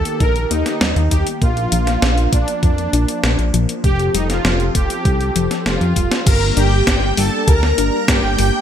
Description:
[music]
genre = synthwave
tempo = 99 BPM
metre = 4/4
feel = straight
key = G minor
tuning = A4 = 440 Hz
[part]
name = soft supersaw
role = melody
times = 0.0-8.6 s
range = D4 to Bb4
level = -21 LUFS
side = right 1 dB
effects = phaser, ping-pong delay
[part]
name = warm analog pad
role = sustained chords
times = 0.0-8.6 s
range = Eb3 to A4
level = -25 LUFS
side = left 1 dB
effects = chorus, sidechain pumping
[part]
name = soft round pluck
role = arpeggios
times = 0.0-8.6 s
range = F3 to G4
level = -26 LUFS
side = left 5 dB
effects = chorus, ping-pong delay
[part]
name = chorused synth bass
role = bass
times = 0.0-8.5 s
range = F1 to F2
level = -18 LUFS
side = equal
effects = sidechain pumping
[part]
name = clean 12-bit digital drum machine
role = drums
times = 0.1-8.5 s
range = crash cymbal, hi-hat, snare drum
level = -21 LUFS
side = left 1 dB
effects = gated reverb
[part]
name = electronic kick drum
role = drums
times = 0.2-8.2 s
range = none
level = -16 LUFS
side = equal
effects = none
[part]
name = string machine, violins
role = second line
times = 6.3-8.6 s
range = G5 to Bb5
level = -24 LUFS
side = right 1 dB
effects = ensemble chorus
[sound]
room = light reverb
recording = bright 1980s-style digital production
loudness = -14 LUFS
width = side -9 dB against mid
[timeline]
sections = 0.0-6.3 A section; 6.3-8.6 B section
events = drum fill 5.7-6.3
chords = 0.0 Eb; 1.4 Bb; 3.8 Fadd9; 6.3 Gm

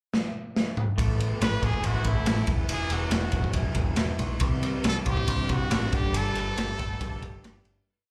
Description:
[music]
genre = indie rock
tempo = 139 BPM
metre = 4/4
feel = straight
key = unclear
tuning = A4 = 436 Hz
[part]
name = raw garage drum kit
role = drums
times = 0.1-7.8 s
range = kick drum, ride cymbal, snare drum, toms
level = -30 LUFS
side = equal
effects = none
[part]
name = electric guitar through a small old amp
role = riff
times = 1.0-7.9 s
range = C3 to A4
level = -38 LUFS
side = equal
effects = subtle chorus, slapback echo
[part]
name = raw garage guitar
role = riff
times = 1.0-7.9 s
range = C3 to A4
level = -40 LUFS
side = equal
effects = overdrive, lush chorus, slapback echo
[part]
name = growling picked electric bass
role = bass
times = 1.0-7.8 s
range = E1 to C2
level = -32 LUFS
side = equal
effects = overdrive
[part]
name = brilliant trumpet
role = melody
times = 1.4-7.5 s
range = E4 to B4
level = -35 LUFS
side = equal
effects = slapback echo, tape echo
[sound]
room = little or no reverb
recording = live gig heard through the venue's PA, club reverb, lossy compression artefacts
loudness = -27 LUFS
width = mono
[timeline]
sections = 0.0-1.0 pickup bar; 1.0-7.9 pre-chorus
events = drum fill 0.1-1.0; fade-out 6.2-7.9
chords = 0.0 N.C.; 1.0 Asus2; 2.5 Eadd9; 4.4 Cadd9; 5.9 Gsus2

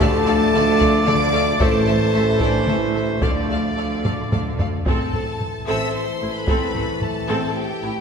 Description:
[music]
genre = cinematic, epic orchestral film score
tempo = 112 BPM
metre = 3/4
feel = straight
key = A minor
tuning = A4 = 439 Hz
[part]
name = rich symphonic violin section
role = melody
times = 0.0-8.0 s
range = D5 to E6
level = -29 LUFS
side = left 3 dB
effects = none
[part]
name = rich chamber violin section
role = second line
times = 0.0-8.0 s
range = G4 to F5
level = -30 LUFS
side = left 4 dB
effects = none
[part]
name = warm symphonic viola section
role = accompaniment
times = 0.0-7.9 s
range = A3 to A4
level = -27 LUFS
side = equal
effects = none
[part]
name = dark trombone section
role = sustained chords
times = 0.0-8.0 s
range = E3 to A3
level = -27 LUFS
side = right 1 dB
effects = none
[part]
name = mellow French horn section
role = sustained chords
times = 0.0-8.0 s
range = C4 to D5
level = -25 LUFS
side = left 3 dB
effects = none
[part]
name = bright trumpet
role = stabs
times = 0.0-4.6 s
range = C5 to D5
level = -26 LUFS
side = right 2 dB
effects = none
[part]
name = dark symphonic cello section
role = bass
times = 0.0-7.9 s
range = A2 to D3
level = -29 LUFS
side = right 2 dB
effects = none
[part]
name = dark tuba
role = bass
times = 0.0-7.9 s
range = A1 to D2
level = -28 LUFS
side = right 3 dB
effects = none
[part]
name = rich symphonic double bass section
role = bass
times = 0.0-7.9 s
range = A1 to D2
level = -26 LUFS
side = right 1 dB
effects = none
[part]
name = solo taiko drums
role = drums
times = 0.0-7.3 s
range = none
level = -24 LUFS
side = equal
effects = none
[sound]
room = wet scoring stage reverb, RT60 1.9 s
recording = recorded in a church or concert hall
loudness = -17 LUFS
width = side -6 dB against mid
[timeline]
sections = 0.0-4.9 A section; 4.9-8.0 B section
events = drum fill 4.0-4.9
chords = 0.0 Dm; 1.6 Am; 3.2 Dm; 4.9 Am

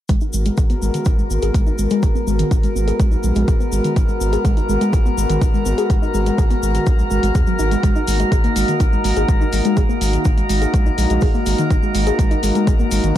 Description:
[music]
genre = progressive house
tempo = 124 BPM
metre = 4/4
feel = straight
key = G# minor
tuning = A4 = 439 Hz
[part]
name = airy breathy pad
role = sustained chords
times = 0.1-13.2 s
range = G#3 to A#4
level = -23 LUFS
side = equal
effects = chorus, sidechain pumping
[part]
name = soft round pluck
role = arpeggios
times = 0.1-13.2 s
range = D#3 to G#4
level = -22 LUFS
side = left 1 dB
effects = wide subtle chorus, sidechain pumping, ping-pong delay
[part]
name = saturated sub bass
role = bass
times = 0.1-13.2 s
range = G#1 to D#2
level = -21 LUFS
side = equal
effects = sidechain pumping
[part]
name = electronic hi-hat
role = drums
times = 0.1-13.2 s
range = none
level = -31 LUFS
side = left 2 dB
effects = none
[part]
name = electronic kick drum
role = drums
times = 0.1-13.2 s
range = none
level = -17 LUFS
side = equal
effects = none
[part]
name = cabasa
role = percussion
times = 0.1-13.2 s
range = none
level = -34 LUFS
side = left 4 dB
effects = none
[part]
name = drifting glass-harmonics texture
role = texture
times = 0.7-13.2 s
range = A#4 to A#5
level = -27 LUFS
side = equal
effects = chorus, built-in reverb, sidechain pumping
[sound]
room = light reverb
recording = dark, warm production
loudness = -15 LUFS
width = side -12 dB against mid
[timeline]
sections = 0.1-13.2 A section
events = filter sweep on synth pluck 0.1-13.2; filter sweep on analog synth pad 0.1-13.2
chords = 0.1 G#m9; 7.8 F#6/G#

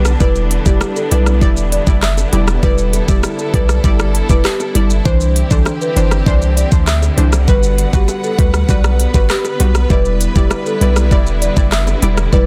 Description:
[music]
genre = dancehall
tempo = 99 BPM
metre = 4/4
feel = straight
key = E minor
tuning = A4 = 440 Hz
[part]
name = marimba with soft mallets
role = melody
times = 0.0-12.5 s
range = G4 to E5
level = -24 LUFS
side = equal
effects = tape echo
[part]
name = synth brass stab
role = accompaniment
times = 0.0-12.5 s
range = E3 to D5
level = -23 LUFS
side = equal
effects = chorus
[part]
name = rich studio string section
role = sustained chords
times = 0.0-12.5 s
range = D3 to F#5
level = -26 LUFS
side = equal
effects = sidechain pumping
[part]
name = warm 808-style bass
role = bass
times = 0.0-12.5 s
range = E1 to D2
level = -17 LUFS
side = equal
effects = none
[part]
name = pop drum kit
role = drums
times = 0.1-12.5 s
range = handclaps, hi-hat, kick drum, rim click, shaker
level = -17 LUFS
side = equal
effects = none
[part]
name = bongos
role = percussion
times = 0.8-12.2 s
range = none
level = -31 LUFS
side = equal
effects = none
[sound]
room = small room ambience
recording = dense, heavily limited modern master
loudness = -14 LUFS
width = mono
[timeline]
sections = 0.0-12.5 A section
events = none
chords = 0.2 Em7; 5.1 Cadd9; 7.5 Gmaj7; 9.9 Em7

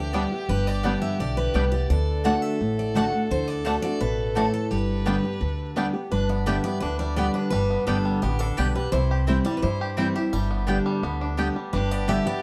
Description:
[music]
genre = bluegrass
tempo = 171 BPM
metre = 4/4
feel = straight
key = G major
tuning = A4 = 438 Hz
[part]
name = picked steel-string acoustic guitar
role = melody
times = 0.0-12.4 s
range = G4 to G5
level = -32 LUFS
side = equal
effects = tape echo
[part]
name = clear fiddle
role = second line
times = 0.0-5.9, 11.7-12.4 s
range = G4 to B4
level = -34 LUFS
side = equal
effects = none
[part]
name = picked steel-string acoustic guitar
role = accompaniment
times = 0.0-12.4 s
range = G2 to G4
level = -29 LUFS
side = equal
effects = none
[part]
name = upright bass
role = bass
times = 0.0-12.2 s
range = G1 to G2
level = -29 LUFS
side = equal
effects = none
[part]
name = bluegrass banjo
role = melody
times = 0.1-12.4 s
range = G3 to G4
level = -35 LUFS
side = equal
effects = none
[part]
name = mandolin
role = stabs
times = 0.1-12.2 s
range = A3 to A5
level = -32 LUFS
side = equal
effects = none
[sound]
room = light reverb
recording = dark, warm production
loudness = -25 LUFS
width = mono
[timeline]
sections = 0.0-6.1 A section; 6.1-12.4 A section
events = none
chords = 0.0 G; 1.9 D; 4.7 G; 8.9 C; 10.3 G

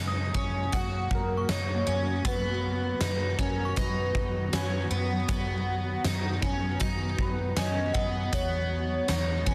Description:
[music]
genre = dream pop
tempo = 79 BPM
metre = 4/4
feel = straight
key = B major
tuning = A4 = 442 Hz
[part]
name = shimmering ambient pad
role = sustained chords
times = 0.0-9.5 s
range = C#3 to F#4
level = -39 LUFS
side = equal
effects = chorus, built-in reverb
[part]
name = picked twelve-string acoustic guitar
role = arpeggios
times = 0.0-9.5 s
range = B3 to F#4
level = -35 LUFS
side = equal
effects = analog chorus, delay
[part]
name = vintage muted fingered electric bass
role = bass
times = 0.0-9.5 s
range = E2 to F#2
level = -33 LUFS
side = equal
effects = none
[part]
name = synth chime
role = texture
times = 0.1-8.7 s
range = F#5 to D#6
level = -44 LUFS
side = equal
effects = ensemble chorus, delay
[part]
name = huge arena drum kit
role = drums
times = 0.3-9.5 s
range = hi-hat, kick drum, snare drum, tambourine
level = -35 LUFS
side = equal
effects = none
[part]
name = warm velvety synth lead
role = melody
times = 1.1-9.5 s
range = A#4 to D#5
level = -36 LUFS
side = equal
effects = chorus, delay
[sound]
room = light reverb, small room ambience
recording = dense, heavily limited modern master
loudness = -29 LUFS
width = mono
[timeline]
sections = 0.0-9.5 A section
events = none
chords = 0.0 F#; 2.3 B/F#; 8.3 E6

